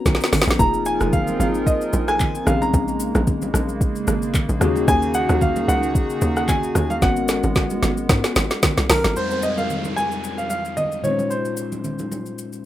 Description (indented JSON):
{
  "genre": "amapiano",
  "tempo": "112 BPM",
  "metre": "4/4",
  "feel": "swing 55% on 16ths",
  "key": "F phrygian",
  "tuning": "A4 = 436 Hz",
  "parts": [
    { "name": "warm baby grand piano", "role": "melody", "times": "0.0-12.7 s", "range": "Bb4 to Bb5", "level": "-24 LUFS", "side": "right 1 dB", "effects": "tape echo" },
    { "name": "bell-like tine electric piano", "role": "accompaniment", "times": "0.0-12.7 s", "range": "F2 to C5", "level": "-26 LUFS", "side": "left 6 dB", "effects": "analog chorus" },
    { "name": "tight log drum bass", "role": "bass", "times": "0.1-9.2 s", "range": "F1 to Ab2", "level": "-23 LUFS", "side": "equal", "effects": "none" },
    { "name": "smooth R&B drum kit", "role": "drums", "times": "0.1-12.6 s", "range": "handclaps, hi-hat, kick drum, rim click, shaker, snare drum", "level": "-21 LUFS", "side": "equal", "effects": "none" },
    { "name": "congas", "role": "percussion", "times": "0.1-12.3 s", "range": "none", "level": "-30 LUFS", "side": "right 3 dB", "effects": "none" },
    { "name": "hollow soft pad", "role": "sustained chords", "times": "0.6-9.1 s", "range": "Db3 to Bb4", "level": "-26 LUFS", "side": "right 1 dB", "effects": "chorus" },
    { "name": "downlifter", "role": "sound effects", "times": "9.2-12.7 s", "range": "none", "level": "-32 LUFS", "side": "right 1 dB", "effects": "none" }
  ],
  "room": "light reverb",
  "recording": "rough home demo mix",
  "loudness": "-18 LUFS",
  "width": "side -13 dB against mid",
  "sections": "0.0-9.2 A section; 9.2-12.7 B section",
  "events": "drop 0.0-9.2; drum fill 0.1-0.6, 7.0-9.2",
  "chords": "0.0 Abm11; 0.6 Fm7; 2.5 Bbm11; 4.6 Ebm7; 7.0 Abm11; 9.2 Fm11; 11.0 Bbm11"
}